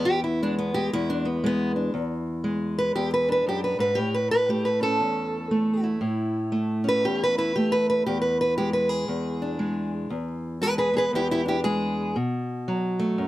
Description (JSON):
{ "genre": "acoustic country blues, solo or duo", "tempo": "117 BPM", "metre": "4/4", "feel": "swing 63% on 8ths", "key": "E mixolydian", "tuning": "A4 = 440 Hz", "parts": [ { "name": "fingerpicked steel-string acoustic guitar", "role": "solo", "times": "0.0-13.3 s", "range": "E2 to B4", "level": "-23 LUFS", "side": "equal", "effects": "none" } ], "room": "light reverb", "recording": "close, detailed microphones", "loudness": "-23 LUFS", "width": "side -16 dB against mid", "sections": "0.0-13.3 A section", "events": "steel-string acoustic guitar solo 0.0-13.3", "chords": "0.0 E7; 4.0 A; 8.1 E7; 12.2 B5" }